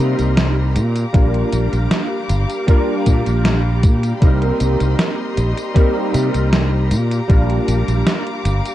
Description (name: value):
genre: vaporwave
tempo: 78 BPM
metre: 4/4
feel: straight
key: unclear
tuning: A4 = 439 Hz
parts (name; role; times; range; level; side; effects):
- warm electric grand piano; accompaniment; 0.0-8.7 s; G3 to Bb4; -21 LUFS; equal; ensemble chorus, tape echo
- clear studio string section; sustained chords; 0.0-8.7 s; G4 to D6; -26 LUFS; equal; none
- fretless electric bass; bass; 0.0-8.6 s; G1 to C3; -17 LUFS; equal; lush chorus
- gated 80s digital drum machine; drums; 0.2-8.7 s; hi-hat, snare drum, tambourine; -20 LUFS; right 1 dB; gated reverb, gated reverb snare
- electronic kick drum; drums; 1.1-7.5 s; none; -12 LUFS; equal; none
room: digital ambience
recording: dark, warm production, cassette tape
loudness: -14 LUFS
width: side -14 dB against mid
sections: 0.0-8.7 A section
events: none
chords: 0.0 Cm7; 0.8 Bb6; 4.2 Cm7; 6.9 Bb6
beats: 0.37 | 1.14 1.91 2.68 3.45 | 4.22 4.99 5.76 6.53 | 7.30 8.06